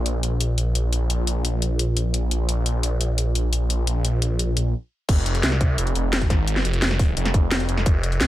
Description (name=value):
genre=dark technical drum and bass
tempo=173 BPM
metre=4/4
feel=straight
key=F minor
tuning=A4 = 440 Hz
part: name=phased detuned saw bass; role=bass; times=0.0-8.3 s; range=F1 to C2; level=-21 LUFS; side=equal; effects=phaser, tube saturation
part: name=drum and bass drum kit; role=drums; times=0.1-8.3 s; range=crash cymbal, hi-hat, snare drum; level=-25 LUFS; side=left 1 dB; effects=none
part: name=electronic kick drum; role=drums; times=5.1-7.9 s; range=none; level=-19 LUFS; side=equal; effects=none
room=little or no reverb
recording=none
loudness=-20 LUFS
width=side -14 dB against mid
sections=0.0-5.1 A section; 5.1-8.3 B section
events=stop 4.7-5.1; drop 5.1-8.3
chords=none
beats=0.23 0.58 | 0.93 1.27 1.62 1.97 | 2.31 2.66 3.01 3.35 | 3.70 4.05 4.39 4.74 | 5.09 5.43 5.78 6.13 | 6.47 6.82 7.17 7.51 | 7.86 8.21